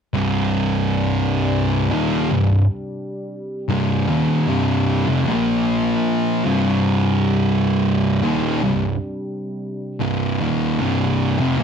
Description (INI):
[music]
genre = metal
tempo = 76 BPM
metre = 4/4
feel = straight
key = C minor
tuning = A4 = 440 Hz
[part]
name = analog drone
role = sustained chords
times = 0.8-11.6 s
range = C3 to C5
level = -30 LUFS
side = equal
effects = chorus
[part]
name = thick fuzz guitar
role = riff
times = 0.1-11.6 s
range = C2 to Bb3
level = -20 LUFS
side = left 8 dB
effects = distortion
[part]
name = thick fuzz guitar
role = riff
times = 0.1-11.6 s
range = C2 to Bb3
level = -19 LUFS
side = right 6 dB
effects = distortion
[sound]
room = moderate studio reverb, RT60 0.6 s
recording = none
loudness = -17 LUFS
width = side -7 dB against mid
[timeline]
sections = 0.1-11.6 A section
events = none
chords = 0.1 Cm; 5.3 Bb5; 6.5 Cm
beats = | 0.13 0.92 1.71 2.50 | 3.30 4.09 4.88 5.67 | 6.46 7.25 8.04 8.83 | 9.61 10.40 11.19